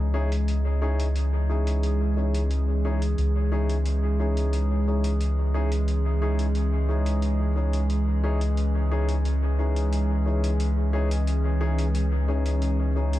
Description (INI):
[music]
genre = ambient dub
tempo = 89 BPM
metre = 4/4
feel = straight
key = C# minor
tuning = A4 = 440 Hz
[part]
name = warbly tape-like pad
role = sustained chords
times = 0.0-13.2 s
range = E3 to D#5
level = -30 LUFS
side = right 3 dB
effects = chorus, built-in reverb
[part]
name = soft dub sub bass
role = bass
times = 0.0-13.2 s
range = C#2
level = -23 LUFS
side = equal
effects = none
[part]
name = dark upright piano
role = stabs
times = 0.1-13.2 s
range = C#4 to G#4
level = -33 LUFS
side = left 4 dB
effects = low-pass filter, dub echo
[part]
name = electronic hi-hat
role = drums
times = 0.3-13.2 s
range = none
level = -43 LUFS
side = left 1 dB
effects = overdrive, low-pass filter on hats, low-pass filter on room, dub echo
[sound]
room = digital ambience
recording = dark, warm production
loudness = -22 LUFS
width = side -14 dB against mid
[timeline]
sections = 0.0-13.2 A section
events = none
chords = 0.0 C#madd9